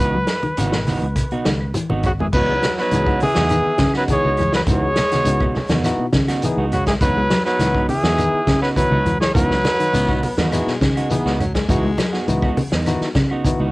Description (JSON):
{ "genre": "afrobeat", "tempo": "102 BPM", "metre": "4/4", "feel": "straight", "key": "C# minor", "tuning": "A4 = 437 Hz", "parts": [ { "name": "clear trumpet", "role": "melody", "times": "0.0-10.5 s", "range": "F#4 to C#5", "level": "-21 LUFS", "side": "equal", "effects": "cassette tape" }, { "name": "electric guitar at the edge of break-up", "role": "arpeggios", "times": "0.0-13.7 s", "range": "B2 to G#3", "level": "-26 LUFS", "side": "left 3 dB", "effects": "cassette tape, analog delay" }, { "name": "electric guitar at the edge of break-up", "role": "stabs", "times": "0.0-13.7 s", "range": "E3 to F#4", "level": "-26 LUFS", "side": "right 3 dB", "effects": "cassette tape" }, { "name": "fingered electric bass", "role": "bass", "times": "0.0-13.7 s", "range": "G#1 to C#3", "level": "-22 LUFS", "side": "equal", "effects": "none" }, { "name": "vintage drum kit", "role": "drums", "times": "0.3-13.6 s", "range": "crash cymbal, hi-hat, kick drum, snare drum", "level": "-23 LUFS", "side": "equal", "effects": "cassette tape" }, { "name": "claves", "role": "percussion", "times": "0.3-13.4 s", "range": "none", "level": "-39 LUFS", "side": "left 1 dB", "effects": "none" }, { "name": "shekere", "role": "percussion", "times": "0.3-13.6 s", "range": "none", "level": "-29 LUFS", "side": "left 1 dB", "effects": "none" }, { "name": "congas", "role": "percussion", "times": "0.4-13.6 s", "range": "none", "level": "-25 LUFS", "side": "right 1 dB", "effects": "none" }, { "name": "bright alto saxophone", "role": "second line", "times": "2.1-10.5 s", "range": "C#3 to G#3", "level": "-26 LUFS", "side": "right 2 dB", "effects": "cassette tape" }, { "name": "barky tine electric piano", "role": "accompaniment", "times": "2.3-13.7 s", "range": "B3 to G#4", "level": "-24 LUFS", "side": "left 1 dB", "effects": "overdrive, medium stereo tremolo, cassette tape" }, { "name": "breathy baritone saxophone", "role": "second line", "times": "9.9-12.7 s", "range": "F#3 to B3", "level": "-28 LUFS", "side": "left 2 dB", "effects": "cassette tape" } ], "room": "light reverb", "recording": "home recording on cassette", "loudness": "-16 LUFS", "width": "side -21 dB against mid", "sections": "0.0-2.3 A section; 2.3-13.7 B section", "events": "drum fill 1.7-2.3", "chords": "0.0 C#m11" }